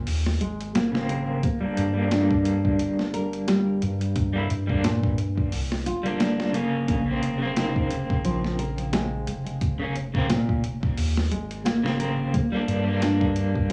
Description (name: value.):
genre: trip hop.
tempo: 88 BPM.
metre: 4/4.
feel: swing 57% on 16ths.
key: unclear.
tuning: A4 = 440 Hz.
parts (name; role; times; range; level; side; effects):
soft dub sub bass; bass; 0.0-13.7 s; F1 to G2; -31 LUFS; equal; transformer saturation.
boom bap sampler-style drum kit; drums; 0.1-13.7 s; hi-hat, kick drum, snare drum; -30 LUFS; equal; vintage 12-bit sampler grit.
nylon-string guitar; arpeggios; 0.4-13.7 s; Bb2 to Bb4; -30 LUFS; equal; tape echo.
electric guitar at the edge of break-up; accompaniment; 0.9-13.7 s; Db3 to E4; -29 LUFS; equal; tremolo, vintage 12-bit sampler grit, low-pass filter, tape echo.
room: light reverb.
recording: home recording on cassette, studio reverb.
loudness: -25 LUFS.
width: mono.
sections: 0.0-13.7 A section.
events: filter sweep on clean electric guitar 0.0-13.7.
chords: 0.0 Bbmadd9; 1.4 Gm; 6.9 Bbmadd9; 12.3 Gm.